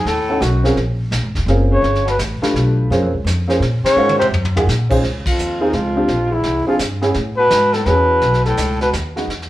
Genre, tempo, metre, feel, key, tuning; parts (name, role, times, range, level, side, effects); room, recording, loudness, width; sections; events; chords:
jazz, small-group swing and bop; 169 BPM; 3/4; swing 65% on 8ths; A4 = 440 Hz
warm flugelhorn; melody; 0.0-8.9 s; Eb4 to Db5; -17 LUFS; left 1 dB
mellow baritone saxophone; second line; 0.0-8.9 s; Eb2 to Db3; -24 LUFS; right 2 dB
upright bass; bass; 0.0-9.5 s; F1 to Bb2; -19 LUFS; equal
vintage brush drum kit; drums; 0.1-9.5 s; brushed snare drum, crash cymbal, hi-hat, kick drum, ride cymbal, snare drum, toms; -24 LUFS; equal
warm upright piano; accompaniment; 0.3-9.3 s; Ab3 to C5; -19 LUFS; right 1 dB
moderate studio reverb, RT60 0.8 s; band playing live in one room; -14 LUFS; side -15 dB against mid
0.0-5.0 A section; 5.0-9.5 B section
band accent 3.8, 5.2; drum fill 4.0-4.7
0.0 Cb9; 0.8 Bbm7; 1.8 G9; 2.9 Gbmaj9#11 (rootless); 4.0 Ab13; 5.0 Dbmaj7; 6.1 Bb9; 7.2 Amaj7; 8.2 Cb7